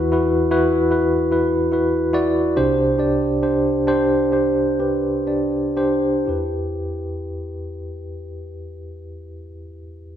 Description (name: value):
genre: pop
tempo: 58-76 BPM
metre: 4/4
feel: straight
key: E minor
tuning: A4 = 440 Hz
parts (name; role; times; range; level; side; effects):
- tine electric piano; accompaniment; 0.0-10.2 s; C2 to D5; -18 LUFS; equal; medium tremolo, slapback echo
room: wet lush hall reverb, RT60 2.0 s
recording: big arena sound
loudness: -17 LUFS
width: side -10 dB against mid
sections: 0.0-6.3 A section; 6.3-10.2 B section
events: slowing down 0.0-6.3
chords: 0.0 Esus2; 2.6 Csus2; 6.3 Em